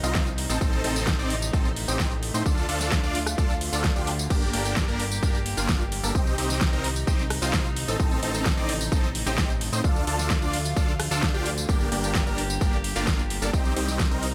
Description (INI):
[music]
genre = EDM, festival progressive house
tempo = 130 BPM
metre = 4/4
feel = straight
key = G minor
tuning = A4 = 441 Hz
[part]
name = rich chamber string section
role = sustained chords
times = 0.0-14.3 s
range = C3 to G4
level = -38 LUFS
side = equal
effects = sidechain pumping
[part]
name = big supersaw lead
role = riff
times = 0.0-14.3 s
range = Bb3 to D5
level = -32 LUFS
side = equal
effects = phaser, sidechain pumping, delay
[part]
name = fat analog bass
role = bass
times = 0.0-14.3 s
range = G1 to A2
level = -33 LUFS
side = equal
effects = sidechain pumping
[part]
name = big-room dance drum kit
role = drums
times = 0.0-14.3 s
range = crash cymbal, hi-hat, rim click, snare drum, tambourine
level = -32 LUFS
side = equal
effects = overdrive, small room ambience
[part]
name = electronic kick drum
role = drums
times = 0.1-14.1 s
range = none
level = -27 LUFS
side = equal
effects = overdrive, small room ambience
[sound]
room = little or no reverb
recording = none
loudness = -25 LUFS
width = mono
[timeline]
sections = 0.0-14.3 A section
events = none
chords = 0.0 Cm; 0.6 Adim; 2.5 Dm; 4.3 Gm; 6.2 Cm; 8.0 Adim; 9.8 Dm; 11.7 Gm; 13.5 Cm